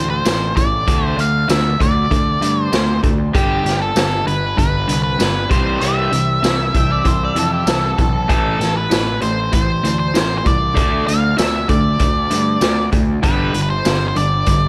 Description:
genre	classic rock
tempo	97 BPM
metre	4/4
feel	straight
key	unclear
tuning	A4 = 439 Hz
part	octave-fuzz lead guitar	melody	0.0-14.7 s	G4 to F5	-22 LUFS	equal	distortion
part	biting overdriven guitar	riff	0.0-14.7 s	G2 to D4	-24 LUFS	equal	none
part	fuzz picked electric bass	bass	0.0-14.7 s	G1 to G2	-24 LUFS	equal	overdrive
part	raw garage drum kit	drums	0.3-14.6 s	hi-hat, kick drum, snare drum, tambourine	-21 LUFS	equal	none
part	octave-fuzz lead guitar	second line	6.8-8.3 s	G4 to G5	-27 LUFS	equal	distortion, analog delay
part	crunchy overdriven guitar	riff	8.3-14.7 s	G2 to D4	-27 LUFS	equal	none
room	light reverb, small room ambience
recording	none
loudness	-17 LUFS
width	mono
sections	0.0-14.7 A section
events	none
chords	0.0 A5; 0.9 D5; 3.3 G5; 5.5 C; 8.3 Am; 10.8 D5; 13.2 G5

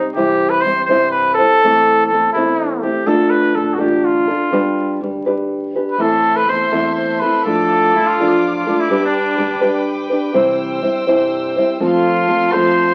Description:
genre	mexican folk, mariachi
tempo	82 BPM (dotted quarters)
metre	6/8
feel	rubato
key	C major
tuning	A4 = 440 Hz
part	clear trumpet	second line	0.0-0.1, 2.8-5.0, 7.9-10.0 s	D4 to B4	-22 LUFS	equal	none
part	nylon-string guitar	accompaniment	0.0-12.9 s	A2 to C5	-19 LUFS	equal	none
part	upright bass	bass	0.0-12.9 s	G1 to G2	-40 LUFS	equal	none
part	bright trumpet	melody	0.1-2.8, 5.9-8.4, 11.8-12.9 s	E4 to C5	-17 LUFS	equal	none
part	bright chamber violin section	sustained chords	6.0-12.9 s	A4 to E6	-28 LUFS	equal	none
room	wet studio reverb, RT60 0.6 s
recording	very old 78 rpm record, vinyl crackle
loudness	-16 LUFS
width	mono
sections	0.1-11.8 A section; 11.8-12.9 B section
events	none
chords	0.1 C; 1.6 Am; 3.1 Dm; 4.5 G; 6.0 Am; 7.5 Dm/A; 8.9 G; 10.3 C; 11.8 F

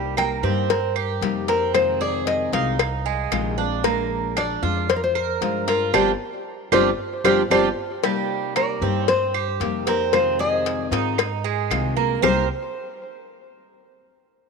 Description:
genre	latin, Cuban son and guajira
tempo	114 BPM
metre	4/4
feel	straight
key	C minor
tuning	A4 = 439 Hz
part	nylon-string guitar	accompaniment	0.0-12.4 s	C3 to G4	-28 LUFS	left 11 dB	none
part	Cuban tres	arpeggios	0.0-12.5 s	G3 to Bb4	-25 LUFS	right 14 dB	none
part	upright bass	bass	0.0-12.5 s	G1 to Ab2	-28 LUFS	right 1 dB	none
part	nylon-string guitar	melody	0.2-12.5 s	G4 to G5	-24 LUFS	left 3 dB	tape echo
part	claves	percussion	0.2-12.4 s	none	-27 LUFS	right 17 dB	none
part	cowbell and bongos	percussion	0.2-12.4 s	none	-26 LUFS	left 13 dB	none
room	moderate plate reverb, RT60 3.1 s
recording	1960s-style stereo with parts hard left and right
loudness	-19 LUFS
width	side -4 dB against mid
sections	0.0-8.0 A section; 8.0-12.2 B section; 12.2-14.3 C section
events	band accent 5.9-8.0; drum fill 7.2-8.0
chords	0.0 Cm7; 1.7 Fm7; 3.8 Bb7; 5.9 G7sus4; 8.0 Cm7; 10.1 Fm7; 12.2 C7(no3)

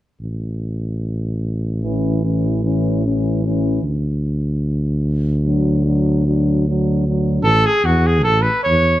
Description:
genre	balkan folk, Balkan brass band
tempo	299 BPM (eighths)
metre	9/8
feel	straight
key	A major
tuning	A4 = 440 Hz
part	dark tuba	bass	0.2-9.0 s	A1 to E2	-18 LUFS	equal	none
part	mellow euphonium	accompaniment	1.8-7.4 s	C#4 to D4	-23 LUFS	left 6 dB	none
part	mellow euphonium	accompaniment	1.8-7.4 s	E3 to F#3	-23 LUFS	right 4 dB	none
part	clear trumpet	melody	7.4-9.0 s	F#4 to C#5	-15 LUFS	right 1 dB	none
room	light reverb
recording	close, detailed microphones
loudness	-16 LUFS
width	side -14 dB against mid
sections	0.2-7.4 A section; 7.4-9.0 B section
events	none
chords	0.2 A; 3.8 D; 7.4 A

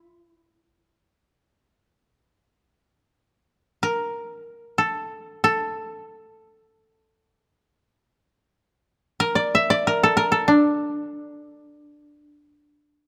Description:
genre	japanese traditional, Japanese chamber music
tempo	free time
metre	none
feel	none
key	unclear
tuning	A4 = 441 Hz
part	koto	solo	0.0-13.1 s	D4 to E5	-22 LUFS	equal	none
room	moderate recital hall reverb, RT60 1.7 s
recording	close, detailed microphones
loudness	-22 LUFS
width	mono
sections	0.0-13.1 A section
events	none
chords	none

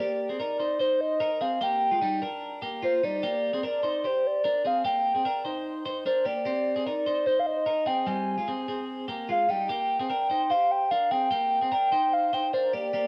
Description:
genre	indie pop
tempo	148 BPM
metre	4/4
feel	straight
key	unclear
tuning	A4 = 439 Hz
part	hollow clarinet-like synth lead	melody	0.0-13.1 s	C5 to Ab5	-28 LUFS	equal	chorus, cassette tape
part	twelve-string electric guitar	arpeggios	0.0-13.1 s	G3 to C5	-34 LUFS	equal	cassette tape
room	moderate spring reverb, RT60 1.9 s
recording	home recording on cassette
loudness	-27 LUFS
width	mono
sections	0.0-13.1 A section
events	none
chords	0.0 Cm7; 3.2 Gm; 6.5 Fm7 (rootless); 9.7 Gm

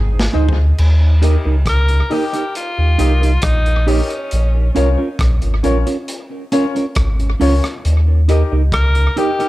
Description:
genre	roots reggae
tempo	68 BPM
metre	4/4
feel	straight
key	Eb mixolydian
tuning	A4 = 440 Hz
part	warm sub bass	bass	0.0-9.1 s	Ab1 to Eb2	-13 LUFS	equal	none
part	crunchy breakbeat drum kit	drums	0.2-9.5 s	crash cymbal, hi-hat, kick drum, rim click, snare drum, toms	-22 LUFS	equal	tape echo
part	clean electric guitar	accompaniment	0.3-9.5 s	Db4 to Eb5	-21 LUFS	right 4 dB	tape echo
part	warm grand piano	stabs	0.3-9.4 s	Db4 to Eb5	-24 LUFS	left 5 dB	none
part	bright tenor saxophone	melody	1.7-9.5 s	Db4 to Bb4	-21 LUFS	left 1 dB	tape echo
room	light reverb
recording	echo-heavy mix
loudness	-13 LUFS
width	side -17 dB against mid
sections	0.8-9.5 A section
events	drum fill 0.0-0.8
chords	0.0 Ab; 0.8 Eb; 4.3 Bbm; 7.8 Eb

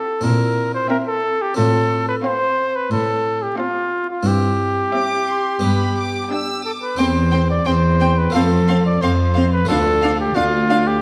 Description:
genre	classical, baroque-style concerto movement with solo episodes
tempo	89 BPM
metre	4/4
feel	straight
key	C major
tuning	A4 = 443 Hz
part	rich chamber violin section	melody	0.0-10.8 s	F5 to E6	-32 LUFS	equal	none
part	warm trumpet	melody	0.0-11.0 s	F4 to D5	-22 LUFS	equal	none
part	rich chamber violin section	second line	0.0-10.8 s	E5 to G5	-30 LUFS	equal	none
part	harpsichord	accompaniment	0.0-11.0 s	D2 to G4	-28 LUFS	equal	none
part	rich symphonic viola section	accompaniment	0.0-10.8 s	C4 to D4	-27 LUFS	equal	none
part	clear studio cello section	bass	0.2-11.0 s	D2 to Bb2	-21 LUFS	equal	none
room	wet recital hall reverb, RT60 1.5 s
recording	vinyl crackle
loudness	-18 LUFS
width	mono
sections	0.0-11.0 A section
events	none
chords	0.2 C7/Bb; 1.6 F/A; 4.3 C/G; 5.6 G; 7.0 C/E; 8.3 F; 9.7 Dm

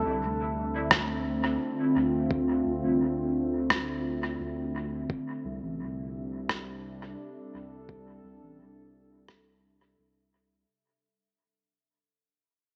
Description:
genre	ambient dub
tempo	86 BPM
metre	4/4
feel	straight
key	unclear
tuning	A4 = 440 Hz
part	warbly tape-like pad	sustained chords	0.0-10.7 s	C3 to E5	-32 LUFS	equal	chorus, built-in reverb
part	soft dub sub bass	bass	0.0-10.6 s	A1 to D2	-41 LUFS	equal	none
part	electronic kick drum	drums	0.9-9.4 s	none	-36 LUFS	equal	none
part	electronic rim click	drums	0.9-9.4 s	none	-29 LUFS	equal	dub echo
room	wet echo chamber reverb, RT60 1.9 s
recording	small speaker sound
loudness	-29 LUFS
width	mono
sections	0.0-10.7 A section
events	fade-out 0.0-10.7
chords	0.0 Dm7; 5.1 C6

